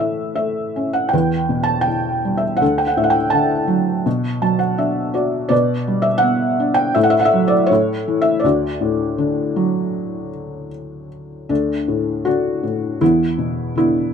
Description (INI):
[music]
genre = classical, lyrical solo piano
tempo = 80 BPM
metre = 4/4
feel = rubato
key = D major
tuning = A4 = 438 Hz
[part]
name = felt-muted upright piano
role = solo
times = 0.0-14.1 s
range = D2 to A5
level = -16 LUFS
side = equal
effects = none
[sound]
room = light reverb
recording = close, detailed microphones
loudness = -16 LUFS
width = side -7 dB against mid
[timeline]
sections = 0.0-11.5 A section; 11.5-14.1 B section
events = felt piano fill 4.1-5.5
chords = 0.0 A; 1.1 Em; 2.6 D; 4.1 Bm7; 5.5 G/B; 7.0 Dadd9/A; 7.7 A; 8.4 D; 13.0 E5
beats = 0.38 1.13 1.88 | 2.62 3.34 4.06 4.79 | 5.51 6.24 6.96 7.70 | 8.44 9.19 9.94 10.72 | 11.50 12.26 13.01 13.76